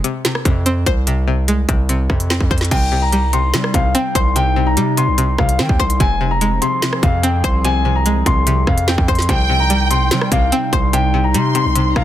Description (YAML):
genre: hip hop, drill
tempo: 146 BPM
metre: 4/4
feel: half-time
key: C minor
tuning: A4 = 440 Hz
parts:
  - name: string-like resonator pluck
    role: accompaniment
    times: 0.0-12.0 s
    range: C3 to C5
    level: -21 LUFS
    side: left 2 dB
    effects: chorus
  - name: drill drum kit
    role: drums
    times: 0.0-12.0 s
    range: crash cymbal, hi-hat, kick drum, rim click, snare drum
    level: -18 LUFS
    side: equal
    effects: overdrive
  - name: distorted 808-style bass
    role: bass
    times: 0.5-12.0 s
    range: F1 to G3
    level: -18 LUFS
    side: right 1 dB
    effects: distortion
  - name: dark baby grand piano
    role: melody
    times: 2.7-12.0 s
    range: F5 to C6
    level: -20 LUFS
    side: left 2 dB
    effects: ping-pong delay
  - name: warbly tape-like pad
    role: sustained chords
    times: 3.4-12.0 s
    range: C3 to Ab4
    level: -24 LUFS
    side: left 1 dB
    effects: chorus, built-in reverb
  - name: warm studio violin section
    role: second line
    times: 9.3-12.0 s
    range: G5 to C6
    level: -21 LUFS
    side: right 1 dB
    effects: ping-pong delay
room: digital ambience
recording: dense, heavily limited modern master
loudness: -13 LUFS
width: side -12 dB against mid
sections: 0.0-2.7 A section; 2.7-12.0 B section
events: none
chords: 0.0 Fm; 2.7 Cm; 6.0 Fm; 9.3 Cm